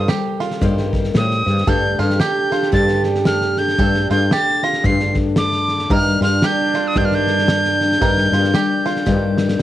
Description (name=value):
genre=acoustic folk duo or small band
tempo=114 BPM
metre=4/4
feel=swing 59% on 8ths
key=unclear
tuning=A4 = 443 Hz
part: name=tin whistle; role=melody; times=0.0-9.6 s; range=D6 to C7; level=-19 LUFS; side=equal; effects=cassette tape
part: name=mellow French horn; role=second line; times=0.0-9.6 s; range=D4 to A4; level=-24 LUFS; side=right 7 dB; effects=cassette tape
part: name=picked steel-string acoustic guitar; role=accompaniment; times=0.0-9.6 s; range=G2 to C5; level=-22 LUFS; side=left 7 dB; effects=cassette tape
part: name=bluegrass banjo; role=arpeggios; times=0.0-9.4 s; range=F4 to Bb4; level=-26 LUFS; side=right 8 dB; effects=cassette tape
part: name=woody fretless electric bass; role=bass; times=0.0-9.6 s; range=G2 to A2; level=-20 LUFS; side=equal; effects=none
part: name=loose indie drum kit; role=drums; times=0.1-9.6 s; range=kick drum, snare drum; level=-22 LUFS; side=equal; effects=cassette tape
room=studio ambience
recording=home recording on cassette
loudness=-15 LUFS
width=side -13 dB against mid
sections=0.0-9.6 A section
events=drum fill 9.1-9.6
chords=0.0 Cm7/G; 1.7 Dsus4/G; 5.9 Ebmaj7/G